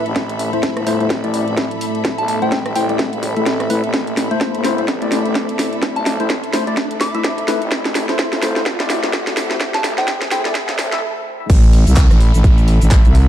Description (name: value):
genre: bass house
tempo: 127 BPM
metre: 4/4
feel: swing 58% on 16ths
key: A minor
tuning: A4 = 440 Hz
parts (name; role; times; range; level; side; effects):
- dark analog pad; sustained chords; 0.0-11.0 s; A3 to E5; -27 LUFS; equal; chorus, sidechain pumping
- percussive organ stab; stabs; 0.0-11.0 s; A3 to E5; -22 LUFS; left 3 dB; wide subtle chorus, sidechain pumping, ping-pong delay
- riser and downlifter; sound effects; 0.4-13.3 s; none; -28 LUFS; equal; none
- rich symphonic string section; texture; 0.0-13.3 s; A4 to B5; -27 LUFS; equal; sidechain pumping
- growling FM bass; bass; 0.1-13.3 s; G1 to C2; -18 LUFS; equal; overdrive, sidechain pumping, high-pass filter
- garage drum kit; drums; 0.1-13.3 s; cabasa, crash cymbal, handclaps, hi-hat, ride cymbal, rim click, snare drum; -21 LUFS; equal; overdrive, small room ambience
- electronic kick drum; drums; 0.2-13.0 s; none; -15 LUFS; equal; high-pass filter on kick, small room ambience
- soft synth bell; melody; 2.2-10.8 s; G5 to D6; -24 LUFS; equal; chorus, ping-pong delay
room: light reverb, digital ambience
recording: dark, warm production, high-pass filter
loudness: -14 LUFS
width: side -11 dB against mid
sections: 0.0-11.5 A section; 11.5-13.3 B section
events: build-up 0.0-11.5; drum fill 0.0-11.0; filter sweep on synth stab 0.0-11.5; filter sweep on analog synth pad 0.0-11.5; filter sweep 0.0-11.5; riser 0.4-11.0; stop 11.0-11.5; drop 11.5-13.3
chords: 0.0 Am